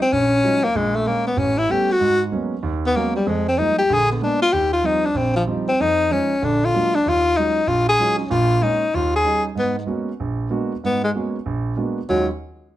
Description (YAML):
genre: jazz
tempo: 191 BPM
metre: 4/4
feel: swing 63% on 8ths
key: Eb minor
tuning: A4 = 440 Hz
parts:
  - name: warm tenor saxophone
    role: melody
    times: 0.0-12.3 s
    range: F3 to Ab4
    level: -18 LUFS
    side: left 2 dB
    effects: none
  - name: warm concert grand piano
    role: accompaniment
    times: 0.1-12.3 s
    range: A1 to Gb4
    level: -23 LUFS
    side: right 3 dB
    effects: none
room: moderate studio reverb, RT60 0.8 s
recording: dark, warm production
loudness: -17 LUFS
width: side -13 dB against mid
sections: 0.0-9.6 A section; 9.6-12.1 B section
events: none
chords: 0.0 Ebm11; 0.7 Bbm7; 1.4 A9; 2.0 Abm11; 3.3 Fm11; 3.9 Bb7b9; 4.5 Eb69; 5.8 Fm7; 6.4 Bb7b13; 7.0 Ebm11; 8.3 Bbm7; 8.9 Eb7; 9.6 Abm11; 10.2 Bb7b9b13; 10.8 Abm11; 11.4 Bb7b9b13; 12.1 Ebm11